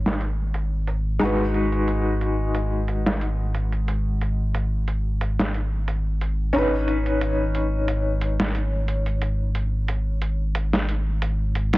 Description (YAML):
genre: trip hop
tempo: 90 BPM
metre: 4/4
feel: swing 54% on 16ths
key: unclear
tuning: A4 = 440 Hz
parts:
  - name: felt-muted upright piano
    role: accompaniment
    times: 0.0-11.8 s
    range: G#3 to B4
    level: -25 LUFS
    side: left 1 dB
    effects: tremolo, tape echo
  - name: dark detuned saw bass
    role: bass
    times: 0.0-11.8 s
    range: G#1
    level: -24 LUFS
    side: equal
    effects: none
  - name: dusty soul sampler-style drum kit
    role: drums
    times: 0.1-11.8 s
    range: hi-hat, snare drum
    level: -26 LUFS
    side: right 1 dB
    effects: overdrive, low-pass filter on hats, low-pass filter on snare
room: light reverb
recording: heavily compressed radio sound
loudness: -21 LUFS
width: side -19 dB against mid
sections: 0.0-11.8 A section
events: none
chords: 0.0 Badd9/G#; 1.2 G#m7; 6.5 Badd9/G#